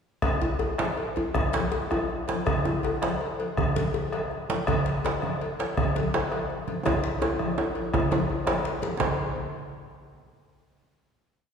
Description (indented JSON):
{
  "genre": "west african traditional, West African drum ensemble",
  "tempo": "110 BPM (dotted quarters)",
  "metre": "12/8",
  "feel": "straight",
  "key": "none",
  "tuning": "none",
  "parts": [
    { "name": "bombo", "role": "percussion", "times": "0.2-9.2 s", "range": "none", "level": "-30 LUFS", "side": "left 1 dB", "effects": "none" },
    { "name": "congas", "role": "percussion", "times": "0.2-9.2 s", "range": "none", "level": "-31 LUFS", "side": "right 2 dB", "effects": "none" },
    { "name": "cowbell", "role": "percussion", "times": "0.2-9.2 s", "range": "none", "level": "-35 LUFS", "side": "left 2 dB", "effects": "none" },
    { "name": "djembe", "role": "percussion", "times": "0.2-9.2 s", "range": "none", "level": "-33 LUFS", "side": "left 3 dB", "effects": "none" },
    { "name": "djembe", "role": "percussion", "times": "0.4-9.2 s", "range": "none", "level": "-30 LUFS", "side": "right 1 dB", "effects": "none" }
  ],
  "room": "wet concert hall reverb, RT60 2.1 s",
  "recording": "heard from further back in the room, small room ambience",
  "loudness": "-24 LUFS",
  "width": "side -6 dB against mid",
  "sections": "0.2-9.0 A section; 9.0-11.1 final hit",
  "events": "speeding up 0.2-11.1; drum fill 6.9-9.0",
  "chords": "none"
}